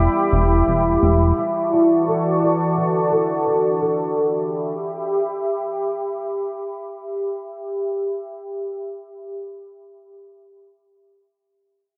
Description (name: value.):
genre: dream pop.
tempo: 73-86 BPM.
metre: 4/4.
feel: straight.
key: E dorian.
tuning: A4 = 445 Hz.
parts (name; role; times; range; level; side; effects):
lush unison pad; sustained chords; 0.0-10.1 s; E3 to D6; -25 LUFS; equal; chorus, low-pass filter.
fingerpicked twelve-string acoustic guitar; arpeggios; 0.0-4.7 s; E2 to A4; -22 LUFS; equal; lush chorus, low-pass filter, analog delay.
chorused synth bass; bass; 0.0-1.3 s; E1; -20 LUFS; equal; none.
room: moderate echo chamber reverb, RT60 2.2 s.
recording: echo-heavy mix.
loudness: -21 LUFS.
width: mono.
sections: 0.0-10.1 A section.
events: filter sweep 0.0-10.1; slowing down 4.2-10.1.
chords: 0.0 Em7; 1.4 Dmaj7/E; 4.2 Em7.